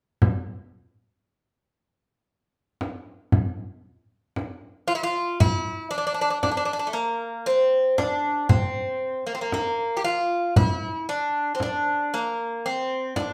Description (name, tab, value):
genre	Turkish makam ensemble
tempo	116 BPM (eighths)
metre	10/8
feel	straight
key	D makam ussak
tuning	A4 = 440 Hz
part	frame drum	percussion	0.2-13.3 s	none	-25 LUFS	equal	none
part	Greek bouzouki	melody	4.9-13.3 s	A3 to G4	-26 LUFS	equal	none
room	wet large studio reverb, RT60 0.9 s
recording	band playing live in one room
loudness	-25 LUFS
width	mono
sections	0.2-5.4 A section; 5.4-13.3 B section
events	none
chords	none